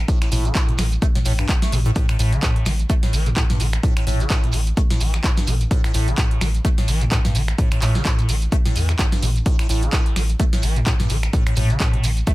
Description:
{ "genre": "acid house", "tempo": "128 BPM", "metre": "4/4", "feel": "swing 57% on 16ths", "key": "unclear", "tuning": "A4 = 440 Hz", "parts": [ { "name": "warm sub bass", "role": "bass", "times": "0.0-12.2 s", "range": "A1 to E2", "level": "-21 LUFS", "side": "equal", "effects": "tube saturation, sidechain pumping" }, { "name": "liquid acid bass", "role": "riff", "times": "0.1-12.3 s", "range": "G2 to A3", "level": "-25 LUFS", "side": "equal", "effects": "phaser, tube saturation, wide subtle chorus, digital delay" }, { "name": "booming analog drum machine", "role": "drums", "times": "0.1-12.3 s", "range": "finger snaps, handclaps, hi-hat, snare drum, toms", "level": "-24 LUFS", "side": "equal", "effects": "soft clipping on snare" }, { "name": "electronic kick drum", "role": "drums", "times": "0.1-12.3 s", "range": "none", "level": "-20 LUFS", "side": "equal", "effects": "none" }, { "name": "shekere", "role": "percussion", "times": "0.1-12.3 s", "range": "none", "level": "-33 LUFS", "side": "right 4 dB", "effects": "none" } ], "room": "light reverb", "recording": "dense, heavily limited modern master", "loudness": "-17 LUFS", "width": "side -18 dB against mid", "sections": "0.0-12.3 A section", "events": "none", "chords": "0.0 A5" }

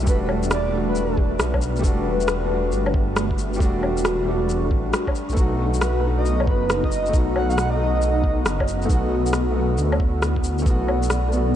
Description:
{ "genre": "future garage", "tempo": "136 BPM", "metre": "4/4", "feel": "swing 66% on 16ths", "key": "E minor", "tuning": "A4 = 438 Hz", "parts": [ { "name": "felt-muted upright piano", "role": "accompaniment", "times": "0.0-11.6 s", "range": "G3 to F#4", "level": "-27 LUFS", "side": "left 1 dB", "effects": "vintage 12-bit sampler grit, sidechain pumping, analog delay" }, { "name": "granular cloud pad", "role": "sustained chords", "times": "0.0-11.6 s", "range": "G3 to D5", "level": "-26 LUFS", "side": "left 1 dB", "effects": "built-in reverb, lush chorus, sidechain pumping" }, { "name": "dark detuned saw bass", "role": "bass", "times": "0.0-11.6 s", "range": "E1 to D2", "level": "-24 LUFS", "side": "equal", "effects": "tube saturation, sidechain pumping" }, { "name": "breathy flute-like synth lead", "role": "melody", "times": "0.1-1.2, 5.8-8.3 s", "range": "B4 to F#5", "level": "-29 LUFS", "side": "right 2 dB", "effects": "tremolo, analog chorus, analog delay" }, { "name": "electronic kick drum", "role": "drums", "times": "0.1-10.8 s", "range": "none", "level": "-21 LUFS", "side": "equal", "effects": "none" }, { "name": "electronic shaker, woodblock and rim click", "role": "drums", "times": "0.1-11.4 s", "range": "none", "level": "-28 LUFS", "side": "left 1 dB", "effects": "none" } ], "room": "moderate huge ambient reverb, RT60 7.3 s", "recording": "dreamy mix soaked in reverb, nothing above 10.8 kHz, faint mains hum", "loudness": "-19 LUFS", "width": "side -10 dB against mid", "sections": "0.0-11.6 A section", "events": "none", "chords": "0.0 Em11; 5.4 B7; 8.9 D69/B" }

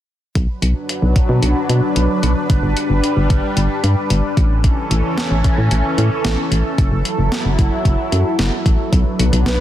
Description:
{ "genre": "synth-pop", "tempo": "112 BPM", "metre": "4/4", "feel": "straight", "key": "B minor", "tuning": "A4 = 440 Hz", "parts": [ { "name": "lush unison pad", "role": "sustained chords", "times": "0.7-9.6 s", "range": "E3 to B4", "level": "-20 LUFS", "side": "equal", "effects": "chorus, phaser" }, { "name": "solid FM bass", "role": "bass", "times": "0.4-9.6 s", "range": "F#1 to B2", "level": "-16 LUFS", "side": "equal", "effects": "none" }, { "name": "clean 12-bit digital drum machine", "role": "drums", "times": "0.4-9.6 s", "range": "hi-hat, kick drum, snare drum", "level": "-18 LUFS", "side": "equal", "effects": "none" }, { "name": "mellow horn-like synth lead", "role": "melody", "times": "9.5-9.6 s", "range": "B4", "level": "-21 LUFS", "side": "right 1 dB", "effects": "chorus, phaser" } ], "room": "light reverb, digital ambience", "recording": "dense, heavily limited modern master", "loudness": "-14 LUFS", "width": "side -12 dB against mid", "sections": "0.4-8.9 A section", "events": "none", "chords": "0.4 Bm; 2.5 G; 4.4 A; 6.8 F#m7; 8.9 Bm" }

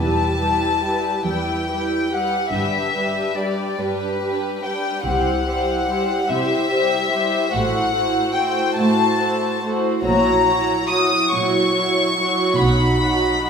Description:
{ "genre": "classical, slow romantic movement for string orchestra", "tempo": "47 BPM (dotted quarters)", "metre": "6/8", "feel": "rubato", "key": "unclear", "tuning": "A4 = 439 Hz", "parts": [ { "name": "warm symphonic violin section", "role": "melody", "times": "0.0-13.5 s", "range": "B4 to D#6", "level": "-21 LUFS", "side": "left 4 dB", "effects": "none" }, { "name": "warm symphonic violin section", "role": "second line", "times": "0.0-13.5 s", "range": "F#4 to F#5", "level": "-24 LUFS", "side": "equal", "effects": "none" }, { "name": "dark symphonic viola section", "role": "accompaniment", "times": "0.0-13.5 s", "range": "F#3 to E4", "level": "-23 LUFS", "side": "right 3 dB", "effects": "none" }, { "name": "dark studio cello section", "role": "bass", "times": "0.0-13.5 s", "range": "E2 to C3", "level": "-26 LUFS", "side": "right 1 dB", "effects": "none" }, { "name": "dark symphonic double bass section", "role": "bass", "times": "0.0-13.4 s", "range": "E1 to C2", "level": "-27 LUFS", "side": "right 1 dB", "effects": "none" } ], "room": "wet recital hall reverb, RT60 1.5 s", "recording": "recorded in a church or concert hall", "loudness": "-17 LUFS", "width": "side -6 dB against mid", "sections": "0.0-13.5 A section", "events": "none", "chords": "0.0 Em; 2.5 G; 5.0 C; 7.5 F#m7b5/A; 10.0 F#7/A#; 12.6 B" }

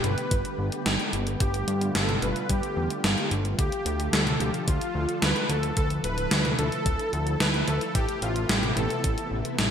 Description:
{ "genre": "synthwave", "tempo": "110 BPM", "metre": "4/4", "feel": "straight", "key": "unclear", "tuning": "A4 = 441 Hz", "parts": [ { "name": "soft supersaw", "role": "melody", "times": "0.0-9.3 s", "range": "F4 to B4", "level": "-30 LUFS", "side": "equal", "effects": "ping-pong delay" }, { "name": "analog string pad", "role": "sustained chords", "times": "0.0-9.7 s", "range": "C3 to A4", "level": "-32 LUFS", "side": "equal", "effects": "ensemble chorus, sidechain pumping" }, { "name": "fat analog bass", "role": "bass", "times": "0.0-9.7 s", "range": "D1 to G2", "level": "-28 LUFS", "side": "equal", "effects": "sidechain pumping" }, { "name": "gated 80s digital drum machine", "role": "drums", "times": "0.0-9.7 s", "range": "hi-hat, snare drum, toms", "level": "-27 LUFS", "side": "equal", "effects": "gated reverb, gated reverb snare" }, { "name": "electronic kick drum", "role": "drums", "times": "0.3-9.2 s", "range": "none", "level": "-28 LUFS", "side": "equal", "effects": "none" } ], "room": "moderate plate reverb, RT60 2.5 s", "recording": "bright 1980s-style digital production", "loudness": "-23 LUFS", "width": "side -8 dB against mid", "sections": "0.0-9.7 A section", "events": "none", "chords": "0.0 Gadd9; 3.6 Dm; 8.0 Amadd9" }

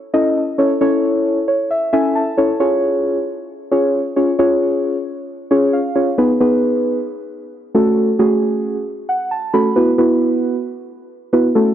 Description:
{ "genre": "pop", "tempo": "134 BPM", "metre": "4/4", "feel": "straight", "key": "unclear", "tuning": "A4 = 440 Hz", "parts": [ { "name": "muted felt-like synth keys", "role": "solo", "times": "0.1-11.7 s", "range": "A3 to B5", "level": "-14 LUFS", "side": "equal", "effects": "chorus, tape echo" } ], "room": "light reverb, digital ambience", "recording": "dry, gritty hardware recording", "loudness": "-14 LUFS", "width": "side -10 dB against mid", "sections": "0.0-6.2 A section; 6.2-11.7 B section", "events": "synth keys fill 1.3-2.6, 5.5-6.2, 8.9-9.8", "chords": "0.0 A; 2.6 C#; 6.2 G#m; 7.7 F#m; 9.8 Bsus4" }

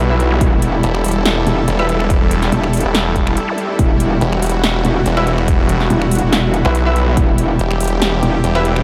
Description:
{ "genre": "heavy wobble dubstep", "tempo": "142 BPM", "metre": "4/4", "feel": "swing 53% on 16ths, half-time", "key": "E minor", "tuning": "A4 = 440 Hz", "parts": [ { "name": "supersaw pad", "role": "sustained chords", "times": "0.0-8.8 s", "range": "G3 to A4", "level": "-22 LUFS", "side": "equal", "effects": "vintage 12-bit sampler grit, sidechain pumping" }, { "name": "snarling distorted saw bass", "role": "bass", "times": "0.0-8.8 s", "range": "E1 to B1", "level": "-19 LUFS", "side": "equal", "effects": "distortion, overdrive" }, { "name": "orchestra-hit-like synth stab", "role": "stabs", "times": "0.1-1.9, 5.2-8.6 s", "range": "E4 to E5", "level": "-26 LUFS", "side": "equal", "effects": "built-in reverb, tape echo" }, { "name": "big-room dance drum kit", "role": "drums", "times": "0.2-8.8 s", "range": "finger snaps, hi-hat, snare drum", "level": "-24 LUFS", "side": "equal", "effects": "none" }, { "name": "zap", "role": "sound effects", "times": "0.3-0.4, 3.5-3.6 s", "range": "none", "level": "-31 LUFS", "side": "equal", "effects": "none" }, { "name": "metallic wobble bass", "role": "bass", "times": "0.4-8.4 s", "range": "E1", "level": "-18 LUFS", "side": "equal", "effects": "distortion, chorus, overdrive" }, { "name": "electronic kick drum", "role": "drums", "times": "0.4-7.3 s", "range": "none", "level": "-18 LUFS", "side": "equal", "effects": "none" } ], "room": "moderate plate reverb, RT60 2.3 s", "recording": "dreamy mix soaked in reverb", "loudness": "-15 LUFS", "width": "mono", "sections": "0.0-8.8 A section", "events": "none", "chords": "0.0 Emadd9" }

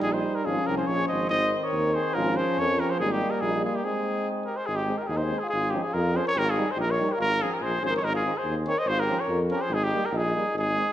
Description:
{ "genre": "balkan folk", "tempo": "143 BPM", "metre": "2/4", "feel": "straight", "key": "Ab major", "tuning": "A4 = 440 Hz", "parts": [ { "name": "mellow trumpet", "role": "melody", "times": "0.0-10.9 s", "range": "G4 to Eb5", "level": "-27 LUFS", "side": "equal", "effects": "none" }, { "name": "clear euphonium", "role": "accompaniment", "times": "0.0-10.8 s", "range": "Eb3 to Ab3", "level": "-33 LUFS", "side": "right 4 dB", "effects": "none" }, { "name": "warm trombone", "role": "accompaniment", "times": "0.0-10.9 s", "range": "Bb3 to Eb4", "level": "-34 LUFS", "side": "left 3 dB", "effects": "none" }, { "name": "warm tuba", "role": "bass", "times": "0.0-10.8 s", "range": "Ab1 to F2", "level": "-30 LUFS", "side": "equal", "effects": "none" }, { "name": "mellow flugelhorn", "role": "second line", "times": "0.5-10.9 s", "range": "Eb4 to C5", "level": "-32 LUFS", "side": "left 2 dB", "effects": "none" } ], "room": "wet recital hall reverb, RT60 1.4 s", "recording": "none", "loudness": "-23 LUFS", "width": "side -12 dB against mid", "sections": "0.0-4.7 A section; 4.7-10.9 A section", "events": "break 3.8-4.7", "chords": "0.4 Db/Ab; 1.3 Ab; 2.1 Bbm9/Ab; 3.0 Fm11/Ab (rootless); 3.8 Ab; 5.5 Bbm7/Ab; 6.4 Eb/Ab; 7.2 Db/Ab; 8.0 Ab; 8.9 Bbm13/Ab; 9.7 Eb/Ab" }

